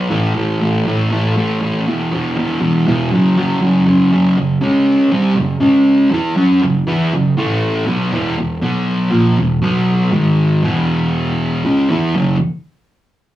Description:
rock; 120 BPM; 4/4; straight; A4 = 437 Hz
fuzz guitar; solo; 0.0-12.4 s; E2 to F#4; -13 LUFS; equal; distortion, cassette tape
wet booth ambience, RT60 0.2 s; home recording on cassette, small room ambience; -13 LUFS; side -14 dB against mid
0.0-4.1 A section; 4.1-12.2 B section; 12.2-13.4 C section
0.1 A5; 1.9 E5; 3.1 F#5; 4.6 C#5; 5.1 F#5; 5.6 C#5; 6.1 F#5; 7.4 A5; 7.9 B5; 8.1 E5; 8.6 B5; 9.1 E5; 9.6 B5; 10.1 G#5; 10.6 E5; 12.2 F#5

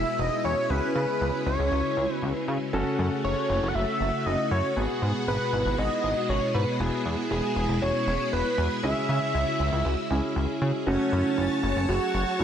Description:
pop; 118 BPM; 4/4; straight; F# minor; A4 = 439 Hz
wide unison lead; melody; 0.0-12.4 s; C#4 to F#5; -28 LUFS; equal
clear grand piano; accompaniment; 0.0-12.4 s; F#3 to A4; -34 LUFS; right 1 dB
string machine, violins; sustained chords; 0.0-12.4 s; B2 to A5; -30 LUFS; equal; ensemble chorus
chorused synth bass; bass; 0.0-12.4 s; E1 to C#3; -28 LUFS; equal
vibraphone with soft mallets; arpeggios; 0.1-12.4 s; D#4 to G#4; -36 LUFS; left 3 dB; digital delay
moderate lush hall reverb, RT60 2.5 s; -24 LUFS; side -9 dB against mid
0.0-10.9 A section; 10.9-12.4 B section
0.0 E; 0.7 C#m; 2.7 F#m; 4.8 G#m7; 6.8 E; 8.8 C#m; 10.9 F#m

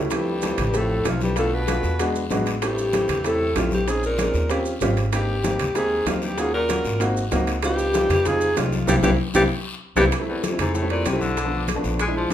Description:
Afro-Cuban jazz; 192 BPM; 4/4; straight; A4 = 440 Hz
warm baby grand piano; accompaniment; 0.0-12.3 s; F3 to Ab4; -26 LUFS; right 1 dB
upright bass; bass; 0.0-12.3 s; Ab1 to F2; -26 LUFS; equal
congas; percussion; 0.0-12.3 s; -30 LUFS; left 4 dB
warm alto saxophone; melody; 0.1-10.1 s; F4 to B4; -24 LUFS; equal
breathy baritone saxophone; second line; 0.1-12.3 s; E2 to Ab3; -28 LUFS; left 3 dB
bongos; percussion; 0.1-12.3 s; -34 LUFS; left 7 dB
guiro; percussion; 0.1-12.3 s; -38 LUFS; left 5 dB
maracas; percussion; 0.1-12.3 s; -38 LUFS; right 6 dB
timbales; percussion; 0.1-12.3 s; -30 LUFS; right 7 dB
moderate large studio reverb, RT60 0.7 s; minimal, uncompressed stereo recording; -19 LUFS; side -11 dB against mid
0.1-10.1 A section; 10.1-12.3 B section
band accent 8.9-10.1; drum fill 9.7-10.1; baritone saxophone solo 10.1-12.3
0.1 Dm7; 1.4 Bm7b5; 2.0 E7; 2.6 Am7; 3.9 Bbm11; 4.5 Eb13; 5.1 Abmaj9; 6.4 Ebm9; 7.0 Ab9; 7.6 Dbmaj9#11; 8.9 C7; 10.1 Fmaj9; 11.4 Bm7b5

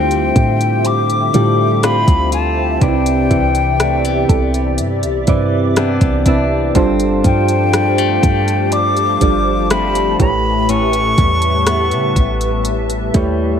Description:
contemporary R&B; 61 BPM; 4/4; straight; D dorian; A4 = 439 Hz
silver concert flute; melody; 0.0-12.7 s; G5 to D6; -18 LUFS; left 4 dB; ping-pong delay
soft electric-piano-like synth keys; accompaniment; 0.0-13.6 s; C3 to A5; -18 LUFS; right 4 dB; chorus
hollow soft pad; sustained chords; 0.0-13.6 s; G4 to D6; -22 LUFS; equal; ensemble chorus
direct-recorded clean electric guitar; arpeggios; 0.0-13.6 s; G2 to F4; -22 LUFS; left 8 dB; harmonic tremolo, ping-pong delay
clean 808-style bass; bass; 0.0-13.6 s; G1 to C#3; -19 LUFS; equal
soft round pluck; texture; 0.0-10.6 s; A4 to D5; -29 LUFS; right 2 dB
smooth R&B drum kit; drums; 0.1-13.4 s; hi-hat, kick drum, rim click; -17 LUFS; equal
light reverb, digital ambience; -12 LUFS; side -8 dB against mid
0.0-13.6 A section
synth keys fill 4.8-6.8
0.0 Dm11; 2.8 Cmaj9; 6.8 G9sus4; 10.2 A9

